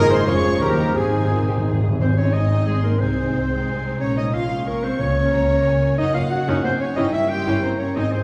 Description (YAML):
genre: classical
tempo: 180 BPM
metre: 3/4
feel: rubato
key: Ab major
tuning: A4 = 440 Hz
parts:
  - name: warm symphonic violin section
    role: melody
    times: 0.0-8.2 s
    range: Gb5 to Db6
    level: -36 LUFS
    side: equal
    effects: none
  - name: clear clarinet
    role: second line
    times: 0.0-8.2 s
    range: G4 to G5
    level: -27 LUFS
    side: equal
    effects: none
  - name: rich symphonic violin section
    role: second line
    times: 0.0-8.2 s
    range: Ab4 to G5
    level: -34 LUFS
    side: equal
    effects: none
  - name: silver concert flute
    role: second line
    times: 0.0-1.6 s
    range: Ab4 to Db5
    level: -30 LUFS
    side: equal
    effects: none
  - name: warm oboe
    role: second line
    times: 0.0-1.7 s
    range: Ab4 to Db5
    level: -34 LUFS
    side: equal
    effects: none
  - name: mellow bassoon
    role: accompaniment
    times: 0.0-1.8 s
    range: Eb3 to F3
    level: -28 LUFS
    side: equal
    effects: none
  - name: rich symphonic viola section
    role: accompaniment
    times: 0.0-8.2 s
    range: Ab3 to Ab4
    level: -29 LUFS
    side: equal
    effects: none
  - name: dark French horn section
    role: sustained chords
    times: 0.0-1.8 s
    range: G3 to Eb4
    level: -29 LUFS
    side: equal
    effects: none
  - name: concert harp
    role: arpeggios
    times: 0.0-8.2 s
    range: F2 to Eb5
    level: -28 LUFS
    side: equal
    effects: none
  - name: clear trumpet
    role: stabs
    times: 0.0-1.6 s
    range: Ab4 to Db5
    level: -29 LUFS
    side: equal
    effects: none
  - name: rich symphonic cello section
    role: bass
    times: 0.0-8.2 s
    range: Ab3 to Ab4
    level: -30 LUFS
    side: equal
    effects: none
  - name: warm symphonic double bass section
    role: bass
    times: 0.0-8.2 s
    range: F1 to Eb2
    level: -28 LUFS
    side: equal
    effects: none
  - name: timpani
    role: percussion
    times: 1.0-2.5, 5.0-5.5 s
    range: Ab2 to Db3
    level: -26 LUFS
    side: equal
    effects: none
room: wet recital hall reverb, RT60 1.7 s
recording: heard from further back in the room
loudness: -20 LUFS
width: mono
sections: 0.0-2.0 A section; 2.0-8.2 A section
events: timpani fill 1.0-2.0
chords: 0.3 Db/F; 0.6 Eb; 1.0 Ab; 3.0 Ab/C; 4.0 Bbm7; 5.0 Bbm/Db; 6.0 Ebm7/Gb; 7.0 Gdim7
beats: 0.27 0.61 | 0.95 1.30 1.65 | 2.00 2.33 2.67 | 3.00 3.34 3.67 | 4.01 4.34 4.67 | 5.00 5.33 5.66 | 5.99 6.31 6.64 | 6.96 7.29 7.62 | 7.95